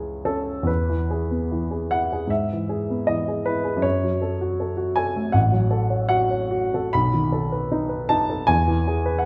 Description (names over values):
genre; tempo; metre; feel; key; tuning
classical, romantic character piece for solo piano; 68-81 BPM; 2/4; rubato; E major; A4 = 440 Hz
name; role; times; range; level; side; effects
warm baby grand piano; solo; 0.0-9.3 s; A1 to B5; -23 LUFS; equal; none
room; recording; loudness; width
wet recital hall reverb, RT60 1.4 s; none; -23 LUFS; mono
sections
0.7-9.3 A section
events
none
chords
0.0 C#m; 0.7 E; 2.3 E/G#; 3.8 F#m; 5.4 F#m/A; 6.9 B7; 8.5 E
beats
| 0.68 1.50 | 2.29 3.06 | 3.84 4.60 | 5.35 6.10 | 6.93 7.72 | 8.49